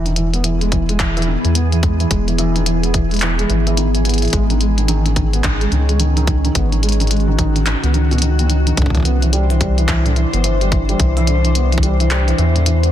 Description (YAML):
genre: IDM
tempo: 108 BPM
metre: 4/4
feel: swing 62% on 16ths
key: E major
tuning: A4 = 440 Hz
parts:
  - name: glassy FM pad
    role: sustained chords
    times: 0.3-12.9 s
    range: D#3 to C5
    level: -22 LUFS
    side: left 1 dB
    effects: ensemble chorus, built-in reverb, sidechain pumping
  - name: felt-muted upright piano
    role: arpeggios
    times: 0.0-12.9 s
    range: D#2 to B3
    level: -21 LUFS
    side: right 2 dB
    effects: ping-pong delay
  - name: round analog bass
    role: bass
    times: 0.0-12.9 s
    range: E1 to E2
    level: -16 LUFS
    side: equal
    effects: none
  - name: glitchy drum kit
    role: drums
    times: 0.1-12.9 s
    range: handclaps, hi-hat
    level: -22 LUFS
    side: left 1 dB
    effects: none
  - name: electronic kick drum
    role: drums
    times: 0.7-11.9 s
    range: none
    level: -18 LUFS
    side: equal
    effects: none
room: light reverb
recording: dense, heavily limited modern master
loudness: -13 LUFS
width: side -11 dB against mid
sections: 0.0-12.9 A section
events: none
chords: 0.0 E; 4.3 G#sus4; 8.8 Cadd9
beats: 0.44 1.00 1.55 | 2.11 2.66 3.22 3.77 | 4.33 4.88 5.44 6.00 | 6.55 7.11 7.66 8.22 | 8.77 9.33 9.88 10.44 | 11.00 11.55 12.11 12.66